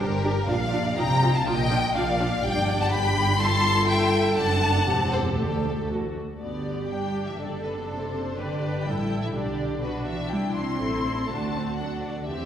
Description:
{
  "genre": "quick classical-period movement for string orchestra",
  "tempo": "122 BPM",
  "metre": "2/4",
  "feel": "rubato",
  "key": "G major",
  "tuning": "A4 = 443 Hz",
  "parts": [
    { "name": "warm studio violin section", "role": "melody", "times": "0.0-12.5 s", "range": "D4 to C6", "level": "-32 LUFS", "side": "left 4 dB", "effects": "none" },
    { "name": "dark studio violin section", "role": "second line", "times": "0.0-12.5 s", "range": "D4 to C6", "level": "-28 LUFS", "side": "left 2 dB", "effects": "none" },
    { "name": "rich studio viola section", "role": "accompaniment", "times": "0.0-12.5 s", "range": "A3 to B4", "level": "-29 LUFS", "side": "right 1 dB", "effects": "none" },
    { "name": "warm studio double bass section", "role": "bass", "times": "0.0-12.5 s", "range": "E1 to E2", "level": "-29 LUFS", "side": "right 1 dB", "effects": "none" },
    { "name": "warm symphonic cello section", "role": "bass", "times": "0.0-12.5 s", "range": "D2 to C4", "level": "-30 LUFS", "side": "right 1 dB", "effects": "none" }
  ],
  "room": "wet concert hall reverb, RT60 2.1 s",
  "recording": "heard from further back in the room",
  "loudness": "-22 LUFS",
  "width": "side -9 dB against mid",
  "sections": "0.0-6.4 A section; 6.4-12.5 B section",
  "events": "none",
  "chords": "0.5 Bb; 1.0 F5/C; 1.5 Bb; 2.4 G; 3.4 Am7/G; 4.4 D/F#; 4.9 C/E; 5.4 Dsus4; 5.9 D; 6.4 G; 7.4 D7/F#; 8.4 G; 9.3 G/B; 10.3 C; 10.8 Am; 11.3 D"
}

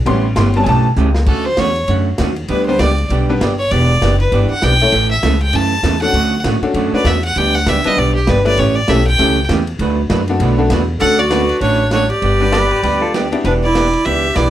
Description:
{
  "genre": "country, western swing",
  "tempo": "197 BPM",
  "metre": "4/4",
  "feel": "swing 60% on 8ths",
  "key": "D major",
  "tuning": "A4 = 439 Hz",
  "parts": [
    { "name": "upright bass", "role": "bass", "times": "0.0-14.5 s", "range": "E1 to A2", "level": "-16 LUFS", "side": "equal", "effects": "none" },
    { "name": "tack piano", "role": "accompaniment", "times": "0.1-13.4 s", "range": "G3 to C6", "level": "-18 LUFS", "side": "left 3 dB", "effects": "none" },
    { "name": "vintage hollow-body jazz guitar", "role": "accompaniment", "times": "0.1-14.5 s", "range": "C#3 to B4", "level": "-19 LUFS", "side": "right 5 dB", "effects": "none" },
    { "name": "vintage drum kit", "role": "drums", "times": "0.1-14.4 s", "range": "crash cymbal, hi-hat, kick drum, ride cymbal, snare drum", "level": "-25 LUFS", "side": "equal", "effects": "none" },
    { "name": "clear fiddle", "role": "melody", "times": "1.3-14.5 s", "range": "G4 to A5", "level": "-17 LUFS", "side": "equal", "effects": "none" },
    { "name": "breathy clarinet", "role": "second line", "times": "11.0-14.5 s", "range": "D4 to A4", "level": "-18 LUFS", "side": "right 1 dB", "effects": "none" },
    { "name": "pedal steel guitar", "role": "second line", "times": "12.5-13.4 s", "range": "F4 to B4", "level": "-20 LUFS", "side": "left 2 dB", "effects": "none" }
  ],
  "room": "moderate club reverb, RT60 0.7 s",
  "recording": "none",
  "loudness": "-12 LUFS",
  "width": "side -12 dB against mid",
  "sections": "0.0-1.3 A section; 1.3-11.0 A section; 11.0-14.5 B section",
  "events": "honky-tonk piano solo 0.0-1.3; drum fill 1.0-1.3; fiddle solo 1.3-11.0",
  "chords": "0.1 A7; 1.3 Dmaj7; 2.5 G; 3.7 Em7; 4.9 A; 6.1 Dmaj7; 7.4 G; 8.6 A7; 9.8 D6; 11.0 Dmaj7; 12.2 G; 13.4 Em7"
}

